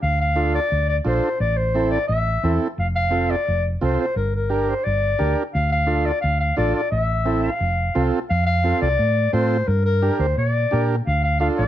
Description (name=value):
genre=latin, cumbia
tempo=174 BPM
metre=4/4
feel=straight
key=F major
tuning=A4 = 440 Hz
part: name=warm clarinet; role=melody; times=0.0-11.7 s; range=Bb4 to F5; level=-22 LUFS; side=left 2 dB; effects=none
part: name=hollow-body short-scale fingered electric bass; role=bass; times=0.0-11.7 s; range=F1 to Bb2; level=-21 LUFS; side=equal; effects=none
part: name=combo organ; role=accompaniment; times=0.4-11.6 s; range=C4 to Bb4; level=-24 LUFS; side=right 4 dB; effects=none
room=light reverb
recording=close, detailed microphones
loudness=-18 LUFS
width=side -12 dB against mid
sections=0.0-8.3 A section; 8.3-11.7 B section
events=none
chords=0.0 Dm; 1.4 Am; 2.8 F; 4.2 Gm; 5.5 Dm; 6.9 Am; 7.6 F; 9.7 Gm; 11.1 Dm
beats=| 0.01 0.36 0.70 1.05 | 1.40 1.74 2.09 2.43 | 2.78 3.12 3.47 3.81 | 4.16 4.50 4.85 5.19 | 5.54 5.88 6.23 6.57 | 6.92 7.26 7.61 7.95 | 8.30 8.64 8.99 9.33 | 9.68 10.02 10.37 10.71 | 11.06 11.40